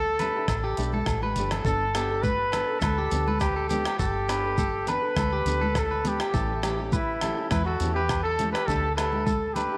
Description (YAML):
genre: highlife guitar band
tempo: 102 BPM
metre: 4/4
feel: straight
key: G major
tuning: A4 = 440 Hz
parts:
  - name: warm trumpet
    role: melody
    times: 0.0-9.8 s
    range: E4 to B4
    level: -30 LUFS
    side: equal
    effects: none
  - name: electric guitar at the edge of break-up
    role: arpeggios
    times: 0.0-9.8 s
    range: G4 to B4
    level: -33 LUFS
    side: equal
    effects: tape echo
  - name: deep dub fingered electric bass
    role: bass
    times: 0.0-9.7 s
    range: G1 to E2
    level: -33 LUFS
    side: equal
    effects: none
  - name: fingerpicked steel-string acoustic guitar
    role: accompaniment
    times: 0.2-9.8 s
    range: E3 to A4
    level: -38 LUFS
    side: equal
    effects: none
  - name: jungle sampler-style drum kit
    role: drums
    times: 0.2-9.7 s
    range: hi-hat, kick drum, rim click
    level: -34 LUFS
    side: equal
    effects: none
  - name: agogo bells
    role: percussion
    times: 0.2-9.7 s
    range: none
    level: -42 LUFS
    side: equal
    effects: none
  - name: congas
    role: percussion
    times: 0.2-9.7 s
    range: none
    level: -36 LUFS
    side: equal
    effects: none
  - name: shekere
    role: percussion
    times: 0.2-9.7 s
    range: none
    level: -39 LUFS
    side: equal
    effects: none
room: moderate echo chamber reverb, RT60 2.1 s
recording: none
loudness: -26 LUFS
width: mono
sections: 0.0-9.8 A section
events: drum fill 1.2-1.7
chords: 0.0 Gadd9; 6.3 A7; 8.7 Dsus4